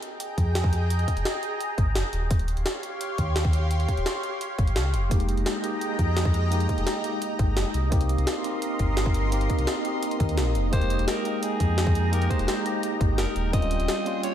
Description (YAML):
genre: liquid drum and bass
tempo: 171 BPM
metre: 4/4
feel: straight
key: F minor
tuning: A4 = 440 Hz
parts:
  - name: lush unison pad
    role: sustained chords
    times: 0.0-14.3 s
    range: Ab3 to C6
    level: -31 LUFS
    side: equal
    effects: chorus, phaser
  - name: jungle sampler-style drum kit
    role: drums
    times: 0.0-14.3 s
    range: hi-hat, snare drum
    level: -32 LUFS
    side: equal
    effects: small room reverb
  - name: sub bass with octave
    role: bass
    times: 0.4-13.9 s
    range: Eb1 to F2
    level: -25 LUFS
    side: equal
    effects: tube saturation
  - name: electronic kick drum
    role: drums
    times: 0.4-13.6 s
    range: none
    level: -24 LUFS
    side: equal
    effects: small room reverb
  - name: tine electric piano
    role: accompaniment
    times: 5.1-14.3 s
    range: G3 to G5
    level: -30 LUFS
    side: right 1 dB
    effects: medium stereo tremolo, analog delay
  - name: raspy alto saxophone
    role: melody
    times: 10.7-14.3 s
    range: Ab4 to Eb5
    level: -32 LUFS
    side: left 1 dB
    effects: ping-pong delay
room: moderate lush hall reverb, RT60 1.8 s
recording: dreamy mix soaked in reverb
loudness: -23 LUFS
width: side -10 dB against mid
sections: 0.0-14.3 A section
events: none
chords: 0.0 Fm11; 2.3 Eb13; 5.1 Fm11; 7.9 Cm7; 10.7 Fm11; 13.5 Eb13